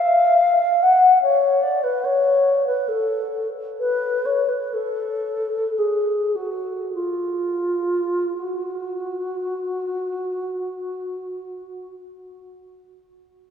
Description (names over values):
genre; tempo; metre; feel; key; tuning
classical, free, expressive piece for unaccompanied alto flute; 36-78 BPM; 3/4; rubato; F# minor; A4 = 440 Hz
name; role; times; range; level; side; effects
mellow wooden-headed alto flute; solo; 0.0-11.9 s; E#4 to F#5; -19 LUFS; left 1 dB; none
room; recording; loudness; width
wet cathedral reverb, RT60 4.8 s; heard from further back in the room; -19 LUFS; side -7 dB against mid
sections
0.0-8.4 A section; 8.4-12.1 B section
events
slowing down 0.8-8.4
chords
none